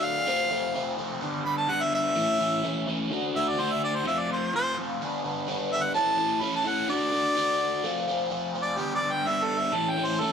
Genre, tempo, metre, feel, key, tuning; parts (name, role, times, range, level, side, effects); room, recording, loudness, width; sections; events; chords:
rock; 127 BPM; 4/4; straight; A4 = 440 Hz
warm harmonica; melody; 0.0-10.3 s; G4 to B5; -26 LUFS; right 1 dB
overdriven electric guitar; riff; 0.0-10.3 s; F2 to F#4; -28 LUFS; left 1 dB; phaser
moderate stone room reverb, RT60 1.1 s; rough rehearsal-room recording; -24 LUFS; side -7 dB against mid
0.0-10.3 A section
harmonica solo 0.0-10.3
0.3 F; 1.2 G; 2.2 A; 3.1 D; 4.1 F; 5.0 G; 5.9 A; 6.9 D; 7.8 F; 8.8 G; 9.7 A